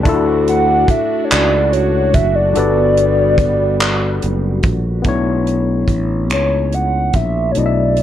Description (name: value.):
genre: slow six-eight R&B.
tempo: 48 BPM (dotted quarters).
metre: 6/8.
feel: straight.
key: unclear.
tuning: A4 = 440 Hz.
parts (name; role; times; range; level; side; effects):
barky tine electric piano; accompaniment; 0.0-8.0 s; B2 to E5; -18 LUFS; left 5 dB; overdrive, plate reverb.
warm analog pad; sustained chords; 0.0-5.0 s; G3 to F#4; -24 LUFS; right 4 dB; lush chorus, plate reverb.
sustaining fretless electric bass; bass; 0.0-8.0 s; F#1 to D2; -18 LUFS; right 1 dB; wide subtle chorus.
warm soul drum kit; drums; 0.1-8.0 s; finger snaps, handclaps, hi-hat, kick drum; -18 LUFS; right 1 dB; none.
hollow clarinet-like synth lead; melody; 0.5-8.0 s; C#5 to F#5; -17 LUFS; right 1 dB; chorus, slapback echo, plate reverb.
room: light reverb.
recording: dark, warm production.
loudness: -13 LUFS.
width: side -11 dB against mid.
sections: 0.0-5.1 A section; 5.1-8.0 B section.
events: none.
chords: 0.1 Dmaj7; 2.6 Gmaj9; 5.1 Bm11.